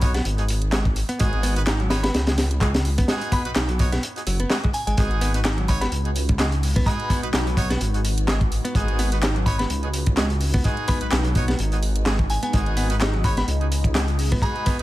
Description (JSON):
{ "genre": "breakbeat, breaks", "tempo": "127 BPM", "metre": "4/4", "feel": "swing 55% on 16ths", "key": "G# minor", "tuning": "A4 = 440 Hz", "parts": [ { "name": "brilliant horn section", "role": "stabs", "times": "0.0-14.8 s", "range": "B3 to C#5", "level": "-31 LUFS", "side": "right 2 dB", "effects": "dub echo" }, { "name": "dark detuned saw bass", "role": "bass", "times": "0.0-14.8 s", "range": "F#1 to C#2", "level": "-23 LUFS", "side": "equal", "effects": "none" }, { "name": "crunchy breakbeat drum kit", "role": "drums", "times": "0.0-14.8 s", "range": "hi-hat, kick drum, snare drum", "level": "-23 LUFS", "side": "equal", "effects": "none" }, { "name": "house drum kit", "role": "drums", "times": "0.0-14.8 s", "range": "handclaps, hi-hat", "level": "-31 LUFS", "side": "equal", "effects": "overdrive" }, { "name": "modern bright picked electric bass", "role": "riff", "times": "0.1-14.8 s", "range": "F#3 to D#4", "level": "-30 LUFS", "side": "equal", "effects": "tube saturation, vintage 12-bit sampler grit, dub echo" }, { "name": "glassy synth bell", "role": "melody", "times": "1.9-14.8 s", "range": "G#5 to B5", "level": "-32 LUFS", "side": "left 1 dB", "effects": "chorus, small speaker sound, dub echo" }, { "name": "phased analog pad", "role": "sustained chords", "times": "5.0-14.8 s", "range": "G#3 to D#5", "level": "-34 LUFS", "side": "equal", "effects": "phaser, chorus, vintage 12-bit sampler grit, sidechain pumping" } ], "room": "small room ambience", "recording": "none", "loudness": "-19 LUFS", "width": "side -16 dB against mid", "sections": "0.0-14.8 A section", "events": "none", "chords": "0.0 G#m7" }